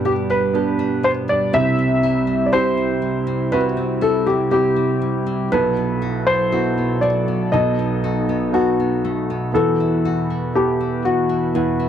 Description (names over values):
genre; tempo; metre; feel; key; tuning
pop; 60 BPM; 4/4; straight; unclear; A4 = 436 Hz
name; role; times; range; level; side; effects
warm baby grand piano; accompaniment; 0.0-11.9 s; G1 to A4; -22 LUFS; right 4 dB; none
warm analog pad; sustained chords; 0.0-11.9 s; B2 to B4; -24 LUFS; right 1 dB; chorus
nylon-string guitar; arpeggios; 0.0-11.9 s; E2 to G4; -27 LUFS; left 6 dB; none
warm baby grand piano; melody; 0.1-11.9 s; F#4 to E5; -20 LUFS; left 2 dB; none
room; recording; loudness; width
light reverb; dry, close 1970s-style studio recording; -16 LUFS; side -9 dB against mid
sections
0.0-11.9 A section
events
none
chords
0.0 G; 1.5 C; 5.5 B7sus4; 7.5 B7; 9.5 Esus2